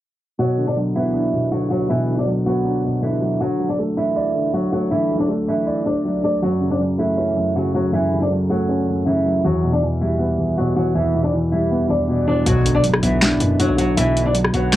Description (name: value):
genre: hip hop, trap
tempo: 159 BPM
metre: 4/4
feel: half-time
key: B minor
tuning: A4 = 440 Hz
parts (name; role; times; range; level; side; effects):
- flamenco guitar; melody; 0.4-14.8 s; E3 to D5; -21 LUFS; right 1 dB; low-pass filter, cassette tape
- dark concert grand piano; accompaniment; 0.4-14.8 s; E2 to D5; -19 LUFS; equal; low-pass filter
- hard-hitting 808-style bass; bass; 12.5-14.8 s; B1 to F#2; -23 LUFS; equal; none
- booming analog drum machine; drums; 12.5-14.8 s; finger snaps, hi-hat, rim click, snare drum; -19 LUFS; left 1 dB; cassette tape
- impact; sound effects; 12.5-14.0 s; none; -29 LUFS; left 1 dB; none
room: light reverb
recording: home recording on cassette, low-pass filter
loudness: -17 LUFS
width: side -14 dB against mid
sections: 0.4-12.5 A section; 12.5-14.8 B section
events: filter sweep 0.4-12.5; impact 12.5-14.0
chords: 0.4 Bm; 3.4 D; 6.4 F#m; 9.4 Em; 12.5 Bm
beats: | 0.39 0.76 1.14 1.52 | 1.90 2.27 2.65 3.03 | 3.40 3.78 4.16 4.54 | 4.91 5.29 5.67 6.05 | 6.42 6.80 7.18 7.55 | 7.93 8.31 8.69 9.06 | 9.44 9.82 10.20 10.57 | 10.95 11.33 11.71 12.08 | 12.46 12.84 13.22 13.59 | 13.97 14.35 14.72